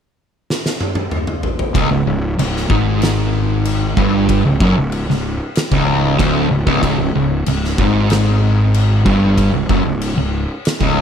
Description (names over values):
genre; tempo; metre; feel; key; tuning
stoner and doom metal; 94 BPM; 4/4; straight; unclear; A4 = 440 Hz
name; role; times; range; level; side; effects
oversized low-tuned drum kit; drums; 0.5-11.0 s; crash cymbal, kick drum, snare drum, toms; -20 LUFS; equal; none
fuzz guitar; riff; 1.7-11.0 s; C#2 to G#2; -14 LUFS; equal; distortion
fuzz fingered electric bass; bass; 1.8-11.0 s; C#1 to G#1; -21 LUFS; equal; overdrive
room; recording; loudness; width
little or no reverb; none; -14 LUFS; side -8 dB against mid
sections
0.0-1.8 A section; 1.8-11.0 B section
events
drum fill 0.5-1.8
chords
0.0 N.C.; 1.8 C#5